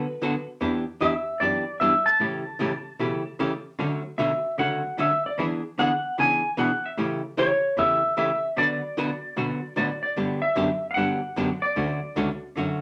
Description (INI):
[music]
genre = country, western swing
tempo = 151 BPM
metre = 4/4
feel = swing 66% on 8ths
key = D major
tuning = A4 = 440 Hz
[part]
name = clean lap steel guitar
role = melody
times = 0.0-12.4 s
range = B4 to A5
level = -26 LUFS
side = equal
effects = none
[part]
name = archtop guitar, miked and amplified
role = accompaniment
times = 0.0-12.8 s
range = C#3 to B4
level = -30 LUFS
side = equal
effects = none
[part]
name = rich cello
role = bass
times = 0.6-12.6 s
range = C#2 to E3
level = -34 LUFS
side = equal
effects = none
[sound]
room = wet small room reverb, RT60 0.5 s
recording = none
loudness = -25 LUFS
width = mono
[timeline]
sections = 0.0-10.2 A section; 10.2-12.8 B section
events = none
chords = 0.0 Bm7; 0.6 Em7; 2.2 A7; 3.8 Dmaj7; 5.4 E7; 7.0 A7; 8.6 D6; 10.2 Gmaj7; 11.8 Dmaj7